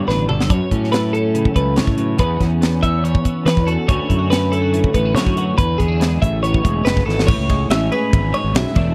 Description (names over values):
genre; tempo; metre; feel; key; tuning
math rock and midwest emo; 141 BPM; 4/4; straight; A major; A4 = 440 Hz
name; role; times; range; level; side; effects
twelve-string electric guitar; accompaniment; 0.0-8.9 s; E2 to G#4; -25 LUFS; equal; analog chorus
twelve-string electric guitar; arpeggios; 0.0-8.9 s; G#4 to E5; -24 LUFS; equal; tape echo
fuzz fingered electric bass; bass; 0.1-8.9 s; E1 to E3; -22 LUFS; equal; overdrive
crisp fusion drum kit; drums; 0.1-8.9 s; crash cymbal, hi-hat, kick drum, ride cymbal, snare drum, toms; -20 LUFS; equal; none
room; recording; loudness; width
little or no reverb; dry, close 1970s-style studio recording; -17 LUFS; mono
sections
0.0-7.3 A section; 7.3-8.9 B section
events
drum fill 0.1-0.5, 7.1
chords
0.5 F#m; 2.2 Amaj9/E; 3.9 Dmaj7; 5.6 E7; 6.2 Amaj9; 7.3 Amaj7